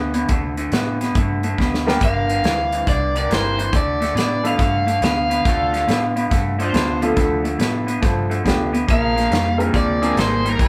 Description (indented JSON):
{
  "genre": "electric blues shuffle",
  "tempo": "140 BPM",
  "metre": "4/4",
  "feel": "swing 66% on 8ths",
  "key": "D minor",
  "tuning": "A4 = 439 Hz",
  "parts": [
    { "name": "electric guitar through a small old amp", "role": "riff", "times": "0.0-10.7 s", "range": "G2 to B3", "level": "-24 LUFS", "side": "equal", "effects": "spring reverb" },
    { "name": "vintage muted fingered electric bass", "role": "bass", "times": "0.0-10.7 s", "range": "G1 to A2", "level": "-28 LUFS", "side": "equal", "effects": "none" },
    { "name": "natural country drum kit", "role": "drums", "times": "0.1-10.7 s", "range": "hi-hat, kick drum, snare drum", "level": "-24 LUFS", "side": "equal", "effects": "none" },
    { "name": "clear concert grand piano", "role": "accompaniment", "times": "1.9-10.2 s", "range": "F3 to C5", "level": "-26 LUFS", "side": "equal", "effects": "none" },
    { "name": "overdriven electric guitar", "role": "melody", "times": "2.0-10.7 s", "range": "Bb4 to F5", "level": "-24 LUFS", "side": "equal", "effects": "none" },
    { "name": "clear horn section", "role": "stabs", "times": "2.0-10.7 s", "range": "C#4 to C5", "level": "-28 LUFS", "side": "equal", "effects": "slapback echo" }
  ],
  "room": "moderate large studio reverb, RT60 0.9 s",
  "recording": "band playing live in one room",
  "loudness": "-19 LUFS",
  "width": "mono",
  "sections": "0.0-10.7 A section",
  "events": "drum fill 1.6-2.0",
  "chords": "0.0 D5; 2.0 Gm; 3.7 Dm; 8.9 Bb7"
}